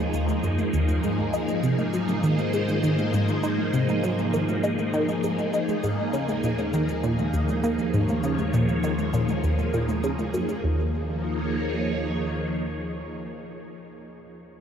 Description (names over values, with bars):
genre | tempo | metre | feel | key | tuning
ambient, sequencer-driven space music | 100 BPM | 4/4 | straight | unclear | A4 = 439 Hz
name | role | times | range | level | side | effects
phased string machine | sustained chords | 0.0-13.8 s | F3 to Db5 | -27 LUFS | equal | ensemble chorus, phaser
analog drone | bass | 0.0-12.4 s | Eb2 to Ab2 | -32 LUFS | equal | chorus
resonant blip pluck | riff | 0.1-10.9 s | Eb2 to Eb4 | -26 LUFS | equal | phaser, tape echo
electronic cabasa and toms | percussion | 0.1-10.6 s | none | -35 LUFS | right 1 dB | overdrive, tape echo
room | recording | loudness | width
wet huge ambient reverb, RT60 8.5 s | dark, warm production | -22 LUFS | side -8 dB against mid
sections
0.0-10.6 A section; 10.6-13.0 B section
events
filter sweep on synth arpeggio sound 0.0-10.6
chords
0.0 Ebm7; 1.0 Ab; 5.8 Eb7(no3); 10.6 Eb5